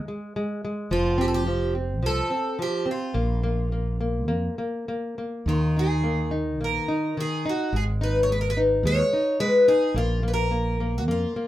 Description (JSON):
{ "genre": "fado-style ballad", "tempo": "107 BPM", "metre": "4/4", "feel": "rubato", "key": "unclear", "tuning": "A4 = 439 Hz", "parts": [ { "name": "picked twelve-string acoustic guitar", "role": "melody", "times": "0.0-11.5 s", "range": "F4 to Db5", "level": "-24 LUFS", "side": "left 1 dB", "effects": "none" }, { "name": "nylon-string guitar", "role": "accompaniment", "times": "0.0-11.5 s", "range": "Eb3 to Eb4", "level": "-27 LUFS", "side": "equal", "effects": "none" }, { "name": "mellow fretless electric bass", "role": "bass", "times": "0.9-11.2 s", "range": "F1 to F2", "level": "-25 LUFS", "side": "equal", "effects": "none" } ], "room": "moderate studio ambience, RT60 0.5 s", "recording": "band playing live in one room", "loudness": "-22 LUFS", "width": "side -14 dB against mid", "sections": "0.0-11.5 A section", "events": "none", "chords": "0.0 Ab5; 0.9 F; 3.2 Bb5; 5.5 Eb5; 7.7 Ab5; 9.9 Bb5" }